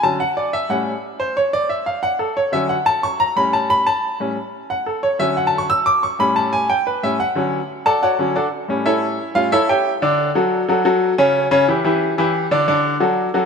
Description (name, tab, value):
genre	latin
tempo	180 BPM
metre	4/4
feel	straight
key	D major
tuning	A4 = 440 Hz
part	bright upright piano	solo	0.0-13.5 s	A2 to E6	-16 LUFS	equal	none
room	wet plate reverb, RT60 2.9 s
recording	heard from further back in the room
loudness	-16 LUFS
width	side -6 dB against mid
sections	0.0-10.0 A section; 10.0-13.5 B section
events	upright piano solo 0.0-10.0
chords	0.0 Dmaj7; 0.7 A7; 2.0 Dmaj7; 3.4 A7; 4.7 Dmaj7; 6.0 A7; 7.4 Dmaj7; 8.7 A7; 10.0 Dmaj7; 11.3 C#dim; 12.7 D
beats	0.04 0.37 | 0.70 1.04 1.37 1.70 | 2.03 2.37 2.70 3.03 | 3.37 3.70 4.03 4.36 | 4.70 5.03 5.36 5.70 | 6.03 6.36 6.69 7.03 | 7.36 7.69 8.02 8.36 | 8.69 9.02 9.36 9.69 | 10.02 10.35 10.68 11.02 | 11.35 11.68 12.01 12.34 | 12.68 13.01 13.34